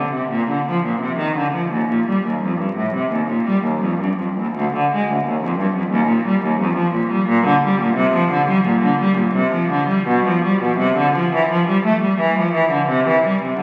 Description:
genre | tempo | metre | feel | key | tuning
classical, baroque-style suite movement for unaccompanied cello | 86 BPM | 4/4 | rubato | unclear | A4 = 437 Hz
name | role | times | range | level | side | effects
rich cello | solo | 0.0-13.6 s | D2 to A3 | -18 LUFS | equal | none
room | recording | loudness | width
wet concert hall reverb, RT60 1.9 s | very old 78 rpm record, vinyl crackle | -18 LUFS | mono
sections
0.0-13.6 A section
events
none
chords
none

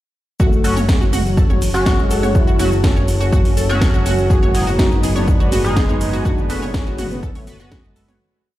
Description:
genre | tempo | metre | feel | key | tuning
melodic techno | 123 BPM | 4/4 | straight | F# minor | A4 = 441 Hz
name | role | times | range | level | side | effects
expressive synth lead | melody | 0.4-8.1 s | F#3 to F#4 | -24 LUFS | left 1 dB | wide subtle chorus, sidechain pumping, digital delay
wide unison pluck | arpeggios | 0.4-8.2 s | F#4 to C#5 | -25 LUFS | right 1 dB | sidechain pumping, digital delay
dark detuned saw bass | bass | 0.4-8.2 s | F#1 | -21 LUFS | equal | sidechain pumping
analog drone | drone | 1.6-8.3 s | F#2 | -27 LUFS | equal | none
electronic kick drum | drums | 0.4-7.8 s | none | -16 LUFS | equal | none
techno drum kit | drums | 0.4-8.2 s | hi-hat, shaker, snare drum, toms | -25 LUFS | right 1 dB | none
deep dark ambient pad | texture | 1.6-8.2 s | B3 to B5 | -30 LUFS | equal | chorus, built-in reverb, sidechain pumping
sync-sweep polysynth | stabs | 0.6-8.2 s | F#3 to B4 | -25 LUFS | right 1 dB | chorus, sidechain pumping, digital delay
dark studio string section | sustained chords | 4.3-8.2 s | G#2 to B3 | -26 LUFS | equal | sidechain pumping
room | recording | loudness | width
digital ambience | played on a big sound system in a bare room, stone room reverb | -14 LUFS | side -15 dB against mid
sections
0.4-8.2 drop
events
drop 0.4-8.2; fade-out 5.6-8.2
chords
0.4 F#m; 4.3 G#m7/F#; 6.3 Bm7/F#

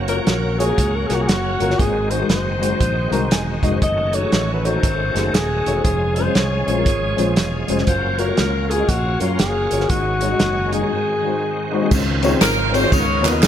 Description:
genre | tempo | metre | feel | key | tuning
uptempo gospel | 118 BPM | 4/4 | swing 63% on 8ths | Db major | A4 = 440 Hz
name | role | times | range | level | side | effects
bright tonewheel organ | sustained chords | 0.0-13.5 s | Eb3 to Bb4 | -26 LUFS | right 2 dB | slow rotary speaker, chorus vibrato
fingered electric bass | bass | 0.0-13.5 s | Eb1 to Gb2 | -23 LUFS | right 1 dB | none
breathy alto saxophone | melody | 0.1-11.7 s | F4 to Eb5 | -22 LUFS | left 2 dB | none
dark upright piano | accompaniment | 0.1-13.5 s | Ab2 to Bb5 | -23 LUFS | left 4 dB | none
warm soul drum kit | drums | 0.1-13.5 s | crash cymbal, hi-hat, kick drum, ride cymbal, snare drum | -21 LUFS | right 1 dB | none
tambourine and handclaps | percussion | 11.9-13.5 s | none | -27 LUFS | right 4 dB | none
warm saxophone section | melody | 12.4-13.5 s | Cb4 to Db5 | -19 LUFS | equal | none
room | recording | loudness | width
light reverb | none | -16 LUFS | side -10 dB against mid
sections
0.0-11.9 A section; 11.9-13.5 B section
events
upright piano fill 2.8-3.8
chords
0.0 Gbmaj7; 1.8 Ab7; 3.8 Gbm6; 5.8 Dbmaj7/F; 7.9 Gbmaj7; 9.9 Ab7sus4; 10.9 Ab7; 11.9 Dbmaj9; 12.9 Db13

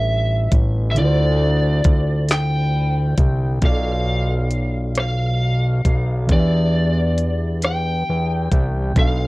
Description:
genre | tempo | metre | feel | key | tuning
slow six-eight R&B | 45 BPM (dotted quarters) | 6/8 | straight | unclear | A4 = 440 Hz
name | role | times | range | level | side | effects
lead guitar through a small cranked amp | melody | 0.0-9.3 s | D5 to G5 | -25 LUFS | left 1 dB | overdrive
mellow tine electric piano | accompaniment | 0.0-9.3 s | B2 to F5 | -25 LUFS | right 2 dB | none
fat analog bass | bass | 0.0-9.3 s | A1 to E2 | -19 LUFS | equal | none
smooth R&B drum kit | drums | 0.5-9.2 s | hi-hat, kick drum, rim click, snare drum | -17 LUFS | equal | none
room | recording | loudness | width
little or no reverb | worn, warbling old tape, cassette tape, warbly pitch drift | -16 LUFS | side -20 dB against mid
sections
0.0-3.6 A section; 3.6-9.3 B section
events
none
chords
0.0 G9; 1.0 Dm9; 3.6 Bm7b5; 6.3 Em7

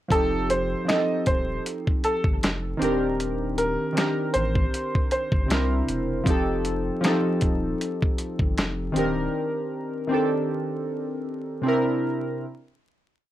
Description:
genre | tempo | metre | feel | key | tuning
lo-fi hip hop | 78 BPM | 4/4 | swing 57% on 16ths | C dorian | A4 = 441 Hz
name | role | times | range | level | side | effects
bright upright piano | melody | 0.1-6.2 s | A4 to Eb5 | -27 LUFS | equal | tape echo
warm analog keys | accompaniment | 0.1-12.4 s | C3 to Bb4 | -25 LUFS | equal | chorus
warm sub bass | bass | 0.1-9.3 s | Eb1 to C2 | -30 LUFS | equal | none
dusty soul sampler-style drum kit | drums | 0.1-9.2 s | finger snaps, hi-hat, kick drum, snare drum | -24 LUFS | equal | none
room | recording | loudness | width
moderate small room reverb, RT60 0.5 s | vinyl crackle | -22 LUFS | side -13 dB against mid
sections
0.1-12.4 A section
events
none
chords
0.1 F7; 2.8 Cm7/Eb; 5.5 C7; 6.3 F7; 9.0 Cm7/Eb; 11.6 C7

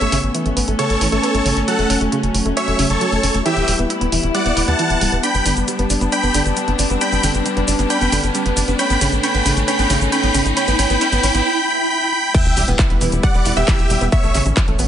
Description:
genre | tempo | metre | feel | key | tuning
uplifting trance | 135 BPM | 4/4 | straight | E dorian | A4 = 440 Hz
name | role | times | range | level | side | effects
big supersaw lead | melody | 0.0-14.4 s | G4 to B5 | -20 LUFS | equal | sidechain pumping, tape echo
dark studio string section | sustained chords | 0.0-14.9 s | F#3 to E4 | -23 LUFS | left 2 dB | sidechain pumping
analog pluck | arpeggios | 0.0-14.9 s | C#3 to E4 | -23 LUFS | right 3 dB | lush chorus, sidechain pumping, tape echo
tight sequencer bass | bass | 0.0-14.9 s | D1 to E2 | -20 LUFS | equal | sidechain pumping
big-room dance drum kit | drums | 0.0-14.9 s | crash cymbal, handclaps, hi-hat, shaker | -23 LUFS | equal | overdrive
riser, swell and sub drop | sound effects | 3.8-14.1 s | none | -26 LUFS | right 1 dB | none
wide unison pluck | second line | 12.3-14.4 s | E5 to G5 | -26 LUFS | right 1 dB | vintage 12-bit sampler grit, sidechain pumping, tape echo
electronic kick drum | drums | 12.3-14.7 s | none | -16 LUFS | equal | overdrive
room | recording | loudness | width
light reverb | nothing above 10.3 kHz | -14 LUFS | side -10 dB against mid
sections
0.0-12.3 A section; 12.3-14.9 B section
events
build-up 0.0-12.3; filter sweep on synth pluck 0.0-12.3; riser 3.8-11.5; swell 11.5-12.3; drop 12.3-14.9; impact 12.3-14.1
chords
0.0 Aadd9; 1.7 F#m; 3.5 Em; 5.2 G; 8.8 Aadd9; 12.3 Em; 14.1 Aadd9

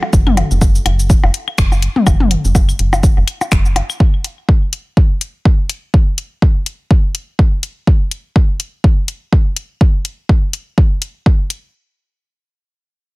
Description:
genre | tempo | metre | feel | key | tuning
minimal techno | 124 BPM | 4/4 | swing 57% on 16ths | F# minor | A4 = 438 Hz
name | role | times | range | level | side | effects
electronic percussion blips, toms and claves | percussion | 0.0-4.0 s | none | -18 LUFS | left 3 dB | studio reverb, tape echo
rubbery square bass | bass | 0.1-3.8 s | F#1 | -15 LUFS | equal | tube saturation, sidechain pumping
electronic kick drum | drums | 0.1-11.4 s | none | -11 LUFS | equal | overdrive, studio reverb
house drum kit | drums | 0.1-11.6 s | cabasa, finger snaps, hi-hat | -20 LUFS | left 3 dB | overdrive, studio reverb
room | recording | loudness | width
little or no reverb | none | -12 LUFS | side -22 dB against mid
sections
0.0-11.7 A section; 11.7-13.2 B section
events
none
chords
none

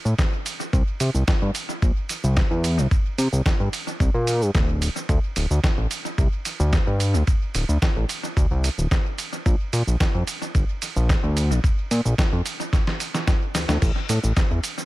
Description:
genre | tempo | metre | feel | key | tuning
nu-disco, nu disco | 110 BPM | 4/4 | straight | D minor | A4 = 444 Hz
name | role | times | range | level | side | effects
fat analog bass | bass | 0.1-14.6 s | D1 to C3 | -20 LUFS | equal | none
dusty soul sampler-style drum kit | drums | 0.1-14.8 s | crash cymbal, hi-hat, ride cymbal, shaker, snare drum | -27 LUFS | right 1 dB | analog delay
electronic kick drum | drums | 0.2-14.5 s | none | -21 LUFS | equal | none
room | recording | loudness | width
little or no reverb | echo-heavy mix | -20 LUFS | side -18 dB against mid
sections
0.0-14.8 A section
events
drum fill 12.7-13.8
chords
none

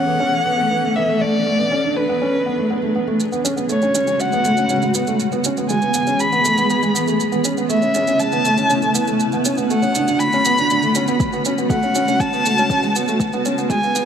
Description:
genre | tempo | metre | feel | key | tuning
piano and strings electronica | 120 BPM | 4/4 | straight | F# minor | A4 = 438 Hz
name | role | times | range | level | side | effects
dark violin | melody | 0.0-14.1 s | B4 to B5 | -19 LUFS | left 1 dB | low-pass filter
granular cloud pad | sustained chords | 0.0-14.1 s | C#3 to A4 | -24 LUFS | left 2 dB | built-in reverb
felt-muted upright piano | riff | 0.1-14.0 s | G#3 to D4 | -20 LUFS | right 2 dB | digital delay
warm sub bass | bass | 3.2-14.1 s | none | barely audible | none | none
shaker | drums | 3.2-14.1 s | none | -26 LUFS | right 4 dB | overdrive, low-pass filter on perc, low-pass filter on room
electronic kick drum | drums | 11.2-13.8 s | none | -22 LUFS | left 1 dB | overdrive
room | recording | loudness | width
moderate huge ambient reverb, RT60 5.0 s | high-pass filter | -16 LUFS | side -8 dB against mid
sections
0.0-3.2 A section; 3.2-14.1 B section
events
build-up 3.2-14.1; filter sweep on violin 3.2-14.1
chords
0.0 E5; 1.2 Bm7; 2.2 E7; 3.2 F#madd9; 5.2 E; 7.2 Aadd9; 9.2 Bm7; 11.2 F#madd9; 13.2 E

